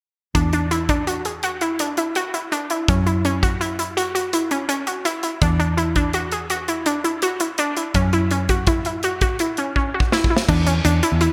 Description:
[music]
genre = progressive instrumental, band music in an uneven meter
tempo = 166 BPM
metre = 7/4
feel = straight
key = unclear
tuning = A4 = 439 Hz
[part]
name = glassy wavetable pluck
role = arpeggios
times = 0.3-11.3 s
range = C#4 to G#4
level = -24 LUFS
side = equal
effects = chorus
[part]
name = vintage muted picked electric bass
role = bass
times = 0.3-11.3 s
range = E2 to F#2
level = -24 LUFS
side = equal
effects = none
[part]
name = modern studio drum kit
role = drums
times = 0.3-11.3 s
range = crash cymbal, hi-hat, kick drum, snare drum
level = -26 LUFS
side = equal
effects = gated reverb
[sound]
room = moderate lush hall reverb, RT60 1.6 s, studio reverb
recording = bright 1980s-style digital production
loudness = -21 LUFS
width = mono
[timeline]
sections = 0.4-10.5 A section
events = drum fill 9.8-10.5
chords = 0.4 E7sus2; 2.9 F#5; 5.4 E7sus2; 8.0 F#5; 10.5 E5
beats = | 0.35 0.71 1.07 1.44 1.80 2.16 2.52 | 2.88 3.25 3.61 3.97 4.33 4.69 5.06 | 5.42 5.78 6.14 6.50 6.87 7.23 7.59 | 7.95 8.31 8.68 9.04 9.40 9.76 10.12 | 10.49 10.85 11.21

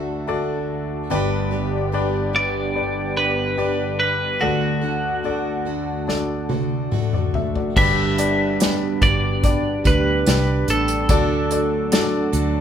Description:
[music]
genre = pop ballad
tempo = 72 BPM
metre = 4/4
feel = straight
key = G major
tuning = A4 = 440 Hz
[part]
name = warm concert grand piano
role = accompaniment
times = 0.0-12.6 s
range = G1 to E5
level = -24 LUFS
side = left 2 dB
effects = none
[part]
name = lush unison pad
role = sustained chords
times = 0.0-12.6 s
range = D2 to D5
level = -29 LUFS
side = equal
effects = chorus
[part]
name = picked plugged-in steel-string acoustic guitar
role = arpeggios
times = 0.0-12.6 s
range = G2 to B4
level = -27 LUFS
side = right 3 dB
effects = none
[part]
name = twelve-string electric guitar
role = melody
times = 2.4-12.6 s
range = F#4 to E5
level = -23 LUFS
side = equal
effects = spring reverb
[part]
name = unplugged drum kit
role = drums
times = 6.1-12.5 s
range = crash cymbal, hi-hat, kick drum, snare drum, toms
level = -21 LUFS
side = equal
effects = none
[part]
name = vintage muted fingered electric bass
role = bass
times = 7.8-12.6 s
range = G1 to D2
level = -24 LUFS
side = right 1 dB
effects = none
[sound]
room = wet studio reverb, RT60 0.7 s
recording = band playing live in one room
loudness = -18 LUFS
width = side -9 dB against mid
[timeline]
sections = 0.0-7.8 A section; 7.8-12.6 B section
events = drum fill 6.1-7.8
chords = 0.0 D; 1.1 G; 4.4 D; 7.8 G; 11.1 D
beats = 0.28 | 1.11 1.93 2.76 3.58 | 4.41 5.24 6.08 6.92 | 7.77 8.61 9.44 10.27 | 11.10 11.92

